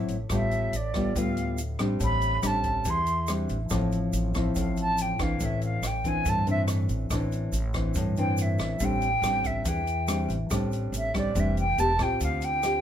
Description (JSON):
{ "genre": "bossa nova", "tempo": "141 BPM", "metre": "4/4", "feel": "straight", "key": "A minor", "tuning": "A4 = 440 Hz", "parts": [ { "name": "nylon-string guitar", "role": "accompaniment", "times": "0.0-12.8 s", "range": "A2 to G4", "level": "-29 LUFS", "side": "left 2 dB", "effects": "none" }, { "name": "upright bass", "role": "bass", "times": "0.0-12.8 s", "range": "E1 to G2", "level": "-30 LUFS", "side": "right 1 dB", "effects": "none" }, { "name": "open jazz drum kit", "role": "drums", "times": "0.1-12.7 s", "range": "hi-hat, kick drum, rim click", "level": "-34 LUFS", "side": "equal", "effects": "none" }, { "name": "egg shaker", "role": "percussion", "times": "0.1-12.8 s", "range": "none", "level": "-43 LUFS", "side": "right 6 dB", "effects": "none" }, { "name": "concert flute", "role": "melody", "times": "0.3-12.8 s", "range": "D5 to C6", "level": "-28 LUFS", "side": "right 1 dB", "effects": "plate reverb" } ], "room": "light reverb", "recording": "none", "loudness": "-24 LUFS", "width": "side -10 dB against mid", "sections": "0.0-12.2 A section", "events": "flute solo 0.0-12.2", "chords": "0.3 G9/A; 2.0 Am11; 3.7 Dm9/A; 5.4 C69/A; 8.8 Am7; 11.8 Em7; 12.2 Dm7", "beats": "| 0.30 0.73 1.15 1.58 | 2.00 2.43 2.86 3.28 | 3.71 4.13 4.56 4.98 | 5.41 5.83 6.26 6.68 | 7.11 7.53 7.96 8.38 | 8.81 9.23 9.66 10.08 | 10.51 10.93 11.36 11.78 | 12.21 12.63" }